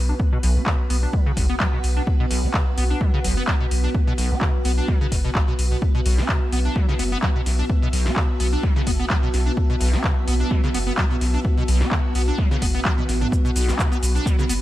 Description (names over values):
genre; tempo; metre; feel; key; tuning
acid house; 128 BPM; 4/4; swing 54% on 16ths; B minor; A4 = 441 Hz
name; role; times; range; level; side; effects
string machine, full ensemble; sustained chords; 0.0-14.6 s; B3 to E5; -31 LUFS; equal; ensemble chorus, sidechain pumping
warm sub bass; bass; 0.0-14.6 s; F#1 to B1; -22 LUFS; equal; tube saturation, sidechain pumping
deep dark ambient pad; texture; 0.2-14.6 s; B3 to A5; -31 LUFS; equal; chorus, built-in reverb, sidechain pumping
liquid acid bass; riff; 0.1-14.5 s; B1 to D4; -27 LUFS; equal; analog chorus, vintage 12-bit sampler grit, tape echo
electronic kick drum; drums; 0.2-14.4 s; none; -21 LUFS; equal; overdrive
electro analog drum machine; drums; 0.4-14.6 s; handclaps, hi-hat, shaker, snare drum, toms; -28 LUFS; equal; none
room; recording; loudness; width
digital ambience; none; -18 LUFS; side -15 dB against mid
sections
0.0-14.6 A section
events
drum fill 12.9-13.3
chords
0.0 B5